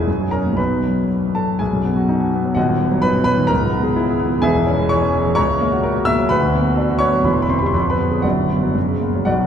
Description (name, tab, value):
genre	classical, virtuoso piano study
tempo	115-130 BPM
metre	2/4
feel	rubato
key	B major, B minor from 5.4 s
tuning	A4 = 444 Hz
part	warm concert grand piano	solo	0.0-9.5 s	D#1 to E6	-15 LUFS	equal	none
room	wet cathedral reverb, RT60 6.6 s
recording	recorded in a church or concert hall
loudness	-15 LUFS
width	side -8 dB against mid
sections	0.0-1.6 A section; 1.6-9.3 A section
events	none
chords	0.1 F#; 0.6 B; 2.6 B/D#; 3.5 C#m7; 4.4 C#m/E; 5.4 F#7/C#; 6.3 Bm/D; 7.2 C/E; 7.7 Fdim; 8.2 Bm/F#; 8.8 F#